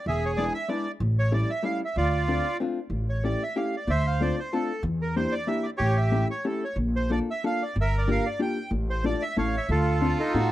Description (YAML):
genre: musette waltz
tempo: 187 BPM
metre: 3/4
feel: swing 55% on 8ths, rubato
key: D minor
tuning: A4 = 439 Hz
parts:
  - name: bandoneon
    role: melody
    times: 0.0-10.5 s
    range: Eb4 to G5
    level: -28 LUFS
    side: right 2 dB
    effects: none
  - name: upright bass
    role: bass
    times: 0.1-10.5 s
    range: E1 to A2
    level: -26 LUFS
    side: equal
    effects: none
  - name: hollow-body jazz guitar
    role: accompaniment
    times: 0.4-10.5 s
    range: G3 to A4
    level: -28 LUFS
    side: left 3 dB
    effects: none
  - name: rich violin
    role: second line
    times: 10.0-10.5 s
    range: F4 to F#4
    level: -31 LUFS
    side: right 2 dB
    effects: none
room: small room reverb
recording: dry, close 1970s-style studio recording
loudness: -24 LUFS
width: side -14 dB against mid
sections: 0.0-10.5 A section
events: none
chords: 0.1 E7; 1.0 A7; 2.0 Dm7; 2.9 A7; 3.9 Dm7; 4.9 Em7b5; 5.8 A7; 6.8 Bbmaj7; 7.8 Gm7; 8.7 Dm/A; 9.4 A; 9.7 Dm7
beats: | 0.05 0.37 0.69 | 1.01 1.32 1.64 | 1.96 2.28 2.61 | 2.93 3.25 3.58 | 3.90 4.22 4.53 | 4.85 5.17 5.49 | 5.80 6.13 6.45 | 6.78 7.11 7.43 | 7.76 8.08 8.40 | 8.72 9.04 9.36 | 9.69 10.01 10.34